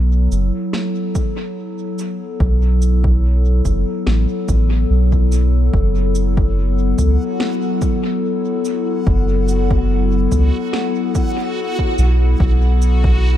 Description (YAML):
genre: ambient dub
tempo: 72 BPM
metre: 4/4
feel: swing 53% on 16ths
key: F# minor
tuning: A4 = 439 Hz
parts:
  - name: warbly tape-like pad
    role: sustained chords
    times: 0.0-13.4 s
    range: F#3 to A4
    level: -21 LUFS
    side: left 3 dB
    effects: chorus, built-in reverb
  - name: soft dub sub bass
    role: bass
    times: 0.0-13.4 s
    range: F#1 to C#2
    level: -14 LUFS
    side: equal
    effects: none
  - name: electronic cabasa and snare drum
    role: drums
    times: 0.3-13.0 s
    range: none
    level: -28 LUFS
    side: equal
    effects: studio reverb, dub echo
  - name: electronic kick drum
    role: drums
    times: 1.2-13.2 s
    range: none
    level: -19 LUFS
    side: equal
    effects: studio reverb
  - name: backwards swelling texture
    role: texture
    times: 6.8-13.4 s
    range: F#4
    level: -28 LUFS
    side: right 2 dB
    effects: built-in reverb
room: little or no reverb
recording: echo-heavy mix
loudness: -14 LUFS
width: side -12 dB against mid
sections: 0.0-5.7 A section; 5.7-13.4 B section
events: none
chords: 0.0 B5; 5.7 F#m7; 12.4 B5